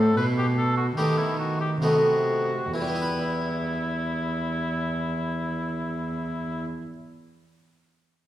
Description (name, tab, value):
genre	classical, baroque-style sonata movement with continuo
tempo	64-78 BPM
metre	3/4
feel	straight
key	E minor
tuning	A4 = 440 Hz
part	warm oboe	melody	0.0-6.7 s	E4 to B4	-30 LUFS	left 2 dB	none
part	harpsichord	accompaniment	0.0-6.9 s	A2 to B4	-26 LUFS	equal	none
part	rich cello	bass	0.0-6.7 s	E2 to D#3	-27 LUFS	right 1 dB	none
room	wet recital hall reverb, RT60 1.4 s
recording	heard from further back in the room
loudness	-24 LUFS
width	side -13 dB against mid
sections	0.0-2.7 A section; 2.7-8.3 B section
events	slowing down 0.0-2.7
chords	0.2 B7; 2.7 Em